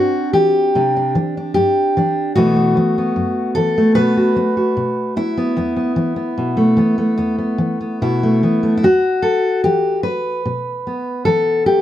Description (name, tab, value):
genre	folk, solo fingerstyle acoustic guitar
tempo	74 BPM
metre	4/4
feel	straight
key	E minor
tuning	A4 = 441 Hz
part	fingerpicked steel-string acoustic guitar	solo	0.0-11.8 s	E2 to B4	-14 LUFS	equal	none
room	light reverb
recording	none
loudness	-14 LUFS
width	side -12 dB against mid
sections	0.0-8.8 A section; 8.8-11.8 B section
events	none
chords	0.0 Cadd9; 2.3 B7sus4; 4.0 B5; 5.6 E5; 8.8 Esus2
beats	0.74 1.55 | 2.35 3.15 3.96 4.76 | 5.57 6.38 7.20 8.01 | 8.82 9.64 10.45 11.26